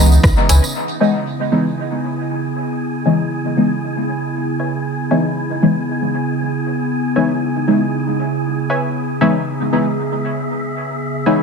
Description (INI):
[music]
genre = dub techno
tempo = 117 BPM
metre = 4/4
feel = swing 54% on 16ths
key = C# minor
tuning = A4 = 440 Hz
[part]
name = warbly tape-like pad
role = sustained chords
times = 0.0-11.4 s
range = C#3 to G#4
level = -21 LUFS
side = right 1 dB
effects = chorus, built-in reverb, sidechain pumping
[part]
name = deep mellow chord stab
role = stabs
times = 0.0-11.4 s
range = E3 to D#4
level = -18 LUFS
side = left 1 dB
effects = chorus, phaser, sidechain pumping, dub echo
[part]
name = soft dub sub bass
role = bass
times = 0.0-0.6 s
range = B1 to C#2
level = -11 LUFS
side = equal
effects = sidechain pumping
[part]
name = wind-like tuned noise texture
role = texture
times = 0.0-11.4 s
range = E4 to G#5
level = -27 LUFS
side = right 2 dB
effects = built-in reverb, sidechain pumping
[part]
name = tambourine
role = percussion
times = 0.1-0.7 s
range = none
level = -24 LUFS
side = right 4 dB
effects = dub echo
[part]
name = deep house drum kit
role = drums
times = 0.2-0.6 s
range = hi-hat, rim click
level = -24 LUFS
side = equal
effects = overdrive, dub echo
[part]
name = filtered dub chord stab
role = riff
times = 0.5-11.4 s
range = B4 to G#5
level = -25 LUFS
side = left 2 dB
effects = chorus, sidechain pumping, dub echo
[sound]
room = moderate spring reverb, RT60 1.2 s, digital ambience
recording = echo-heavy mix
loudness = -16 LUFS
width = side -5 dB against mid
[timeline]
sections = 0.7-11.4 A section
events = none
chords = 0.0 C#m7